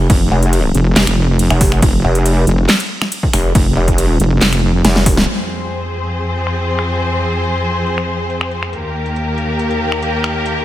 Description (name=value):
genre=heavy wobble dubstep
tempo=139 BPM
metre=4/4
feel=half-time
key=F minor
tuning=A4 = 439 Hz
part: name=pulsing pluck wobble bass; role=bass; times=0.0-5.3 s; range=F1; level=-13 LUFS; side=equal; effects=chorus, overdrive
part: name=wobble bass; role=bass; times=0.1-4.8 s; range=F1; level=-13 LUFS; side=equal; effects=chorus, overdrive
part: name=dubstep drum kit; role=drums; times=0.1-10.5 s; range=crash cymbal, finger snaps, handclaps, hi-hat, snare drum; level=-18 LUFS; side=equal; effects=low-pass filter on snare, low-pass filter on hats, low-pass filter on cymbals
part: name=electronic kick drum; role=drums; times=0.1-5.2 s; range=none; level=-15 LUFS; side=equal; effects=overdrive
part: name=rich symphonic string section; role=sustained chords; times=5.3-10.6 s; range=Eb2 to C5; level=-17 LUFS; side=left 1 dB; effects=sidechain pumping
room=light reverb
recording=none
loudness=-13 LUFS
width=side -14 dB against mid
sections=0.0-5.3 A section; 5.3-10.6 B section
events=drop 0.0-5.3; drum fill 4.8-5.3; band accent 5.2; filter sweep on drum 5.3-10.6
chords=0.0 N.C.; 5.3 Fm; 8.7 Eb